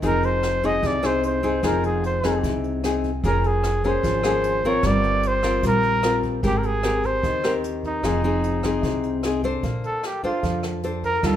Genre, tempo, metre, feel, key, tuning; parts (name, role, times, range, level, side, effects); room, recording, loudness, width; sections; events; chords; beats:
bossa nova; 150 BPM; 4/4; straight; A4 = 440 Hz
nylon-string guitar; accompaniment; 0.0-11.4 s; C3 to C5; -24 LUFS; left 2 dB
upright bass; bass; 0.0-11.4 s; F1 to F2; -27 LUFS; right 1 dB
jazz brush drum kit; drums; 0.0-11.3 s; hi-hat, kick drum, rim click; -31 LUFS; equal
mellow trumpet; melody; 0.1-11.4 s; Eb4 to Eb5; -24 LUFS; equal
moderate large studio reverb, RT60 1.4 s; minimal, uncompressed stereo recording; -20 LUFS; side -10 dB against mid
0.0-9.6 A section; 9.6-11.4 B section
trumpet solo 9.6-11.4
0.0 Fm7; 3.2 Db6/F; 4.8 Bb69/G; 6.4 Abmaj9; 8.0 Fm7; 9.6 Bbmaj9
| 0.03 0.43 0.83 1.23 | 1.63 2.03 2.43 2.83 | 3.23 3.63 4.03 4.43 | 4.83 5.24 5.64 6.04 | 6.44 6.84 7.24 7.64 | 8.04 8.44 8.84 9.24 | 9.64 10.04 10.44 10.84 | 11.24